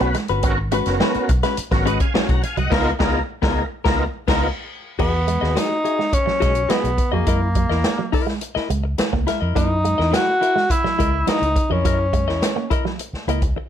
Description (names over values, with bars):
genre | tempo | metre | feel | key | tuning
funk | 105 BPM | 4/4 | straight | unclear | A4 = 439 Hz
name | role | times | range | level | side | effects
semi-hollow electric guitar | accompaniment | 0.0-13.6 s | B3 to E5 | -25 LUFS | left 8 dB | none
electric guitar with an envelope filter | riff | 0.0-13.6 s | F#3 to B3 | -27 LUFS | right 8 dB | none
overdriven tonewheel organ | stabs | 0.0-4.5 s | B3 to A#5 | -24 LUFS | right 2 dB | chorus vibrato, slow rotary speaker
vintage muted fingered electric bass | bass | 0.0-13.6 s | F#1 to F#2 | -23 LUFS | equal | none
swinging big-band drum kit | drums | 0.0-13.6 s | crash cymbal, hi-hat, kick drum, snare drum | -22 LUFS | equal | none
breathy tenor saxophone | melody | 5.0-12.9 s | A#3 to F#4 | -21 LUFS | equal | none
room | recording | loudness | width
light reverb | none | -17 LUFS | side -9 dB against mid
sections
0.0-5.0 A section; 5.0-13.7 B section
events
band accent 2.7-5.0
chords
0.0 G#m11; 2.7 C#13; 5.0 Emaj9; 7.3 F#13